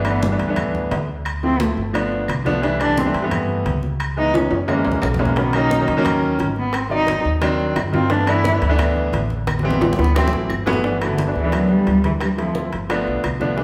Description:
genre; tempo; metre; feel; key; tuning
Afro-Cuban jazz; 175 BPM; 4/4; straight; G major; A4 = 440 Hz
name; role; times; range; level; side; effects
clear concert grand piano; accompaniment; 0.0-13.6 s; D#3 to D5; -24 LUFS; equal; none
upright bass; bass; 0.0-13.6 s; G1 to G2; -26 LUFS; equal; none
timbales; percussion; 0.0-13.4 s; none; -30 LUFS; equal; none
dark cello; melody; 0.1-12.7 s; D3 to E4; -24 LUFS; equal; none
claves; percussion; 0.1-13.4 s; none; -37 LUFS; equal; none
congas; percussion; 0.1-13.6 s; none; -30 LUFS; equal; none
bongos; percussion; 5.4-13.6 s; none; -35 LUFS; equal; none
breathy baritone saxophone; second line; 11.0-12.7 s; D2 to G2; -32 LUFS; equal; none
room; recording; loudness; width
wet large studio reverb, RT60 1.3 s; band playing live in one room; -19 LUFS; mono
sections
0.0-10.8 A section; 10.8-13.6 B section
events
cello solo 0.0-10.8; drum fill 4.3-5.4, 9.5-10.8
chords
0.0 G6; 1.3 Dm7; 1.9 G7; 2.6 C6; 4.0 C#m7; 4.7 F#7; 5.4 Bmaj7; 6.7 Ab7#11; 8.1 G6; 9.5 Am7; 10.2 D7; 10.8 G6; 12.2 Dm7; 12.9 G7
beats
0.23 0.57 0.92 | 1.26 1.60 1.95 2.29 | 2.63 2.98 3.32 3.66 | 4.00 4.35 4.69 5.03 | 5.37 5.71 6.06 6.40 | 6.74 7.08 7.42 7.77 | 8.11 8.45 8.79 9.13 | 9.47 9.81 10.16 10.50 | 10.84 11.18 11.53 11.87 | 12.21 12.55 12.90 13.24 | 13.58

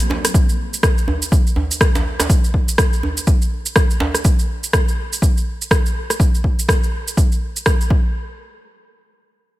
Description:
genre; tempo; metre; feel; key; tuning
afro house; 123 BPM; 4/4; swing 59% on 16ths; none; none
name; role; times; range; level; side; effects
deep house drum kit; drums; 0.0-7.9 s; hi-hat, rim click, shaker; -21 LUFS; right 1 dB; overdrive, studio reverb
djembe; percussion; 0.1-4.1 s; none; -23 LUFS; right 2 dB; none
electronic kick drum; drums; 0.3-8.0 s; none; -16 LUFS; equal; overdrive, studio reverb
room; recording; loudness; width
little or no reverb; none; -15 LUFS; side -17 dB against mid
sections
0.0-8.1 A section; 8.1-9.6 B section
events
none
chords
none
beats
| 0.34 0.83 1.32 1.81 | 2.29 2.78 3.27 3.76 | 4.25 4.73 5.22 5.71 | 6.20 6.68 7.17 7.66

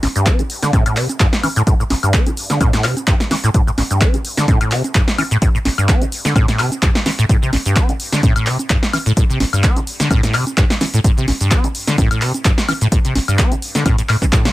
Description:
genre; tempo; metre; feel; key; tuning
acid house; 128 BPM; 4/4; swing 54% on 16ths; A minor; A4 = 440 Hz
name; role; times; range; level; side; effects
deep acid bass; riff; 0.0-14.5 s; A1 to C4; -18 LUFS; equal; tube saturation, ensemble chorus, vintage 12-bit sampler grit, sidechain pumping, dub echo
punchy analog drum machine; drums; 0.0-14.5 s; congas, handclaps, hi-hat, shaker, snare drum, toms, woodblock; -19 LUFS; equal; overdrive
electronic kick drum; drums; 0.3-14.4 s; none; -15 LUFS; equal; overdrive
room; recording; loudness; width
light reverb; none; -13 LUFS; side -17 dB against mid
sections
0.0-14.5 A section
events
drum fill 14.3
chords
none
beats
0.26 0.73 1.20 | 1.67 2.14 2.61 3.08 | 3.54 4.01 4.48 4.95 | 5.42 5.89 6.36 6.83 | 7.29 7.76 8.23 8.70 | 9.17 9.64 10.11 10.58 | 11.04 11.51 11.98 12.45 | 12.92 13.39 13.86 14.33

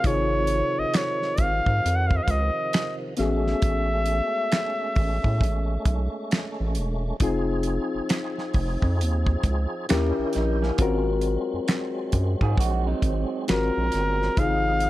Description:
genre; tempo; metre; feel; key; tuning
R&B, neo-soul; 67 BPM; 4/4; swing 61% on 16ths; Db major; A4 = 444 Hz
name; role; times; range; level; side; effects
warm flugelhorn; melody; 0.0-6.7, 13.5-14.9 s; Bb4 to Gb5; -26 LUFS; equal; slapback echo
reed electric piano; accompaniment; 0.0-14.9 s; C3 to Bb4; -29 LUFS; left 5 dB; none
tonewheel organ; sustained chords; 0.0-14.9 s; C3 to Ab4; -33 LUFS; right 1 dB; slow rotary speaker, overdrive, chorus vibrato
damped 70s drum kit; drums; 0.0-14.9 s; finger snaps, hi-hat, kick drum, snare drum; -24 LUFS; equal; none
round analog bass; bass; 0.1-14.9 s; E1 to A2; -25 LUFS; equal; none
electric guitar through a small old amp; second line; 9.9-13.5 s; Bb3 to Ab4; -31 LUFS; right 8 dB; wide subtle chorus
room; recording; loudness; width
small room ambience; none; -22 LUFS; side -16 dB against mid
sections
0.0-14.9 A section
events
none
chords
0.0 Dbmaj9/Ab; 3.2 Amaj13; 7.2 Fm7; 9.9 Eb7b9; 10.8 Ab13; 14.4 Dbmaj9/Ab (rootless)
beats
| 0.04 0.94 1.83 2.73 | 3.63 4.52 5.42 6.31 | 7.21 8.10 9.00 9.89 | 10.79 11.69 12.58 13.48 | 14.37

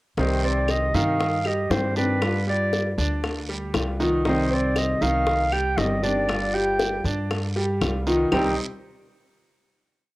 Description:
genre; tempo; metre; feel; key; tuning
latin, Cuban son and guajira; 118 BPM; 4/4; straight; C harmonic minor; A4 = 441 Hz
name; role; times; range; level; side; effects
warm clarinet; melody; 0.2-8.6 s; B4 to G5; -25 LUFS; right 1 dB; cassette tape
nylon-string guitar; accompaniment; 0.2-8.5 s; C3 to G4; -27 LUFS; left 1 dB; cassette tape, plate reverb
bright grand piano; arpeggios; 0.2-8.6 s; C3 to D5; -27 LUFS; right 1 dB; cassette tape, plate reverb
upright bass; bass; 0.2-8.6 s; G1 to G2; -27 LUFS; equal; none
bongos; percussion; 0.2-8.4 s; none; -30 LUFS; left 3 dB; none
guiro; percussion; 0.2-8.4 s; none; -36 LUFS; right 3 dB; none
claves; percussion; 0.7-8.4 s; none; -36 LUFS; left 2 dB; none
room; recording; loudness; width
moderate studio reverb, RT60 0.6 s; home recording on cassette; -21 LUFS; side -19 dB against mid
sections
0.2-8.3 montuno (vamp); 8.3-10.2 final chord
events
none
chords
0.2 Cm; 2.2 G7; 4.3 Cm; 6.3 G7; 8.3 Cm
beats
| 0.18 0.69 1.20 1.71 | 2.22 2.73 3.24 3.75 | 4.26 4.77 5.28 5.78 | 6.29 6.80 7.31 7.81 | 8.32

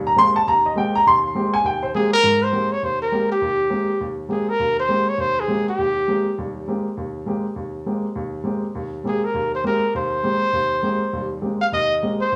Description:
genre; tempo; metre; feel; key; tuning
jazz; 202 BPM; 4/4; swing 62% on 8ths; Ab major; A4 = 439 Hz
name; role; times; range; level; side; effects
warm baby grand piano; accompaniment; 0.0-12.4 s; Eb2 to C6; -24 LUFS; equal; none
mellow trumpet; melody; 2.0-6.5, 9.1-12.4 s; G4 to F5; -22 LUFS; equal; none
room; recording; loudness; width
moderate large studio reverb, RT60 1.0 s; band playing live in one room; -21 LUFS; mono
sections
0.0-2.2 A section; 2.2-12.4 B section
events
none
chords
0.0 Abmaj9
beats
0.16 0.46 0.75 | 1.05 1.34 1.64 1.93 | 2.23 2.52 2.82 3.12 | 3.41 3.71 4.00 4.30 | 4.59 4.89 5.19 5.48 | 5.78 6.08 6.37 6.67 | 6.97 7.26 7.56 7.86 | 8.15 8.45 8.74 9.04 | 9.34 9.63 9.93 10.23 | 10.53 10.82 11.12 11.41 | 11.71 12.01 12.30

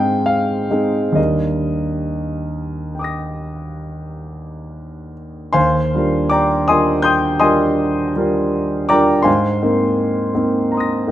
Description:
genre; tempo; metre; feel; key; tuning
classical, impressionist solo piano; 66-84 BPM; 5/4; rubato; Eb major; A4 = 438 Hz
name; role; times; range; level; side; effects
clear concert grand piano; solo; 0.0-11.1 s; Eb2 to Bb6; -16 LUFS; equal; none
room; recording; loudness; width
moderate recital hall reverb, RT60 1.4 s; close, detailed microphones; -15 LUFS; side -12 dB against mid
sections
0.0-5.6 A section; 5.6-11.1 A section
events
none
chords
0.0 Ab; 1.2 Ebmaj7; 5.6 Ebmaj9; 9.3 Abadd9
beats
0.29 | 1.17 2.07 2.95 3.83 4.71 | 5.55 6.32 7.05 7.78 8.53 | 9.27 9.99 10.73

